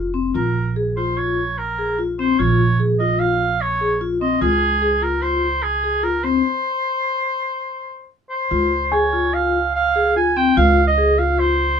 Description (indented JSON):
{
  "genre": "contemporary instrumental, chamber music in an uneven meter",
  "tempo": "147 BPM",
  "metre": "5/4",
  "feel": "straight",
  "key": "unclear",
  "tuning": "A4 = 440 Hz",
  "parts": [
    { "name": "vibraphone with medium mallets", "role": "arpeggios", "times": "0.0-11.6 s", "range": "C4 to Ab4", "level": "-20 LUFS", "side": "left 4 dB", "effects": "none" },
    { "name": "upright bass", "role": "bass", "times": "0.0-11.8 s", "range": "F1 to Db2", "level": "-22 LUFS", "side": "right 2 dB", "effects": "none" },
    { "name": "clear oboe", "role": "melody", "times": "0.4-11.8 s", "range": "Ab4 to Ab5", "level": "-20 LUFS", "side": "right 2 dB", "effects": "none" },
    { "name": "worn celesta", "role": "texture", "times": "8.9-10.4 s", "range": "Ab5", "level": "-25 LUFS", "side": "left 1 dB", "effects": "none" }
  ],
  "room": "little or no reverb",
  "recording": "close, detailed microphones, lossy compression artefacts",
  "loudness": "-16 LUFS",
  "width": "side -7 dB against mid",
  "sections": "0.0-8.5 A section; 8.5-11.8 B section",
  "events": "stop 6.4-8.5",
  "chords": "0.3 Bbm; 4.4 Dbmaj7; 6.4 N.C.; 8.5 Dbmaj7",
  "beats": "| 0.35 0.76 1.17 1.58 1.99 | 2.40 2.80 3.20 3.61 4.01 | 4.42 4.82 5.22 5.63 6.04 | 6.44 6.85 7.26 7.67 8.09 | 8.51 8.92 9.33 9.75 10.16 | 10.57 10.98 11.38 11.79"
}